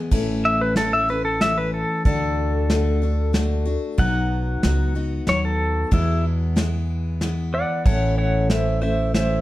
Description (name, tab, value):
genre	honky-tonk and classic country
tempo	93 BPM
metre	3/4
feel	straight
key	A major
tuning	A4 = 441 Hz
part	picked steel-string acoustic guitar	accompaniment	0.0-9.4 s	E2 to G#4	-25 LUFS	left 2 dB	none
part	upright bass	bass	0.1-9.4 s	A1 to E2	-23 LUFS	right 1 dB	none
part	soft brush drum kit	drums	0.1-9.3 s	crash cymbal, hi-hat, kick drum, snare drum	-22 LUFS	equal	none
part	pedal steel guitar	melody	0.5-9.4 s	E4 to F#5	-23 LUFS	equal	none
room	moderate studio reverb, RT60 0.8 s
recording	none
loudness	-19 LUFS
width	side -16 dB against mid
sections	0.1-9.4 A section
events	pedal steel guitar solo 0.1-9.4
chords	0.1 A; 2.1 D; 4.0 B; 5.9 E; 7.9 A